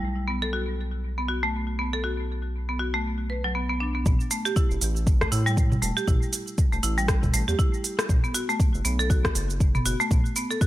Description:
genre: afro house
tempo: 119 BPM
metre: 4/4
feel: swing 58% on 16ths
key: unclear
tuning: A4 = 441 Hz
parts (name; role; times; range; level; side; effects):
- round analog bass; bass; 0.0-10.2 s; E1 to A2; -28 LUFS; equal; sidechain pumping
- marimba with hard mallets; arpeggios; 0.3-10.7 s; F#3 to B4; -28 LUFS; equal; sidechain pumping, dub echo
- afro-pop drum kit; drums; 4.1-10.7 s; hi-hat, rim click, shaker, toms; -28 LUFS; right 1 dB; small room ambience
- electronic kick drum; drums; 4.1-10.7 s; none; -22 LUFS; equal; small room ambience
room: little or no reverb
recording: none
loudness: -22 LUFS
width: side -15 dB against mid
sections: 0.0-4.1 A section; 4.1-10.7 B section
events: drop 4.1-10.7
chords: 0.0 B5; 4.1 A5; 8.1 B5

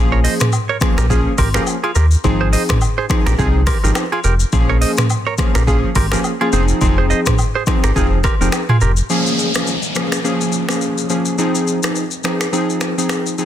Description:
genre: afrobeats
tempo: 105 BPM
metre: 4/4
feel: swing 58% on 16ths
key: Bb dorian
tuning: A4 = 440 Hz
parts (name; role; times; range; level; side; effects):
- warm analog keys; accompaniment; 0.0-13.4 s; F3 to Ab4; -19 LUFS; equal; chorus
- round analog bass; bass; 0.0-9.0 s; F1 to Eb2; -15 LUFS; equal; none
- direct-recorded clean electric guitar; riff; 0.1-8.9 s; F4 to Eb5; -22 LUFS; right 7 dB; tape echo
- afro-pop drum kit; drums; 0.2-13.4 s; finger snaps, hi-hat, kick drum, rim click, shaker, toms; -18 LUFS; equal; overdrive, soft clipping on snare
- agogo bells and woodblock; percussion; 0.4-8.8 s; none; -27 LUFS; left 7 dB; none
- downlifter; sound effects; 9.1-13.4 s; none; -24 LUFS; equal; none
room: little or no reverb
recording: dense, heavily limited modern master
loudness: -14 LUFS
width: side -11 dB against mid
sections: 0.0-9.1 A section; 9.1-13.4 B section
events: none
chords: 0.0 Bbm7; 2.2 Ab6; 4.5 Bbm7; 6.5 Fm7; 9.1 Bbm7; 11.4 Ab6

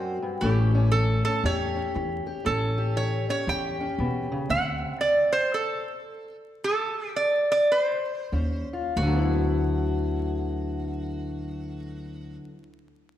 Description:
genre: acoustic country blues, solo or duo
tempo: 92-118 BPM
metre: 4/4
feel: swing 62% on 8ths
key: D major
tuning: A4 = 443 Hz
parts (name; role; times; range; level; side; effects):
- lap resonator guitar; melody; 0.0-12.4 s; F#4 to G5; -26 LUFS; right 2 dB; none
- fingerpicked steel-string acoustic guitar; accompaniment; 0.0-12.7 s; D2 to G4; -29 LUFS; left 2 dB; none
- upright bass; bass; 0.4-4.8, 8.3-12.4 s; A1 to E2; -27 LUFS; equal; none
room: wet concert hall reverb, RT60 1.9 s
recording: recorded in a church or concert hall, vinyl crackle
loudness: -23 LUFS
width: side -11 dB against mid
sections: 0.0-9.0 A section; 9.0-13.2 B section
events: slowing down 4.5-9.0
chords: 0.4 A7; 4.5 D7(no3); 8.3 Ebsus2; 9.0 D69

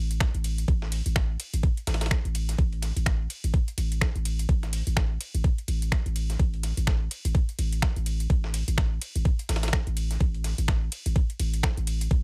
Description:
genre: minimal techno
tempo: 126 BPM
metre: 4/4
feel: swing 59% on 16ths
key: unclear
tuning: A4 = 440 Hz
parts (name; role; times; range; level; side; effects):
- punchy sub bass; bass; 0.0-12.2 s; A1; -30 LUFS; equal; sidechain pumping
- booming analog drum machine; drums; 0.1-12.1 s; finger snaps, hi-hat, ride cymbal; -37 LUFS; equal; none
- dusty soul sampler-style drum kit; drums; 0.2-12.2 s; hi-hat, snare drum; -41 LUFS; equal; high-pass filter on hats, high-pass filter on snare
- electronic kick drum; drums; 0.2-12.2 s; none; -26 LUFS; equal; none
room: little or no reverb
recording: none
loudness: -27 LUFS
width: mono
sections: 0.0-12.2 A section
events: none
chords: none

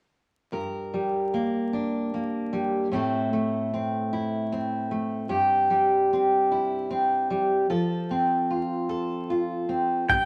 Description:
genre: acoustic folk duo or small band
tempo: 50 BPM (dotted quarters)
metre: 6/8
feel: straight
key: G dorian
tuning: A4 = 438 Hz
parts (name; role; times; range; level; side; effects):
- fingerpicked steel-string acoustic guitar; accompaniment; 0.5-10.3 s; G2 to Bb4; -26 LUFS; equal; none
- pedal steel guitar; melody; 10.1-10.3 s; G5; -22 LUFS; equal; none
- soft brush drum kit; drums; 10.1-10.3 s; hi-hat, kick drum; -31 LUFS; equal; none
room: moderate studio reverb, RT60 0.8 s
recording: vinyl crackle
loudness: -26 LUFS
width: mono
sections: 0.5-10.1 A section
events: none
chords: 0.5 Gm; 2.9 Am; 5.3 C/G; 7.7 F

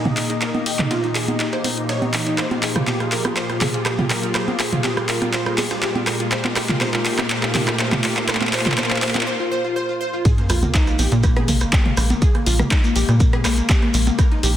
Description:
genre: progressive house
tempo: 122 BPM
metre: 4/4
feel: straight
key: Bb dorian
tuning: A4 = 440 Hz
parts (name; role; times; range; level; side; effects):
- airy breathy pad; sustained chords; 0.0-14.6 s; Bb2 to Eb5; -26 LUFS; left 1 dB; chorus, sidechain pumping
- wide unison pluck; arpeggios; 0.0-14.5 s; Bb3 to Db5; -24 LUFS; equal; lush chorus, sidechain pumping, digital delay
- riser and sub drop; sound effects; 0.7-12.2 s; none; -30 LUFS; equal; none
- house drum kit; drums; 0.1-14.5 s; handclaps, hi-hat, rim click; -23 LUFS; equal; soft clipping on snare
- punchy analog drum machine; percussion; 0.1-14.3 s; congas, rim click, toms; -25 LUFS; right 2 dB; sidechain pumping on perc, sidechain pumping on toms, soft clipping on snare, sidechain pumping on snare
- dusty soul sampler-style drum kit; drums; 0.2-14.6 s; hi-hat, ride cymbal, snare drum; -34 LUFS; right 1 dB; none
- electronic kick drum; drums; 10.3-14.3 s; none; -17 LUFS; equal; none
- maracas; percussion; 10.3-14.5 s; none; -30 LUFS; right 3 dB; none
- tight sequencer bass; bass; 10.5-14.6 s; Bb1 to Bb2; -19 LUFS; equal; sidechain pumping
room: moderate lush hall reverb, RT60 1.7 s, digital ambience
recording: dense, heavily limited modern master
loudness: -17 LUFS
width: side -11 dB against mid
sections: 0.0-10.3 A section; 10.3-14.6 B section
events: build-up 0.0-10.3; drum fill 0.0-9.3; riser 0.7-9.3; break 9.3-10.3; drop 10.3-14.6; impact 10.3-12.2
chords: 0.0 Absus2/Bb; 2.4 Fmadd9/Bb; 6.3 Eb/Bb; 10.3 Bbm7

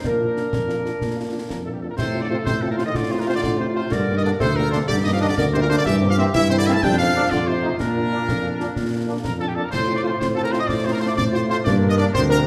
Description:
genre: military-style march for wind band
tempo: 124 BPM (dotted quarters)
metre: 6/8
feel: straight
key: unclear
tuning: A4 = 440 Hz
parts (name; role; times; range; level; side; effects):
- bright trumpet section; melody; 0.0-12.4 s; G4 to A5; -28 LUFS; equal; none
- warm trombone section; sustained chords; 0.0-12.0 s; A3 to F4; -34 LUFS; equal; none
- mellow tuba; bass; 0.0-12.5 s; D2 to Bb2; -26 LUFS; equal; none
- concert snare drum, concert bass drum and clash cymbals; drums; 0.0-12.3 s; none; -31 LUFS; equal; none
- clear woodwind section; second line; 0.1-12.5 s; D4 to C5; -28 LUFS; equal; none
- mellow French horn section; accompaniment; 0.2-12.4 s; G3 to Bb4; -32 LUFS; equal; none
- mellow euphonium; second line; 1.5-12.5 s; G2 to C4; -30 LUFS; equal; none
- bright wooden piccolo; second line; 9.2-12.5 s; G5 to Eb6; -31 LUFS; equal; none
room: wet recital hall reverb, RT60 1.7 s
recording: recorded in a church or concert hall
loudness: -21 LUFS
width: mono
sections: 0.0-2.0 A section; 2.0-9.7 B section; 9.7-12.5 B section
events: none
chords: 0.0 Bb; 2.0 F/A; 3.9 Gm; 5.9 C7/G; 6.8 Bb/F; 7.3 F7; 7.8 Bb; 9.7 F/A; 11.7 Gm

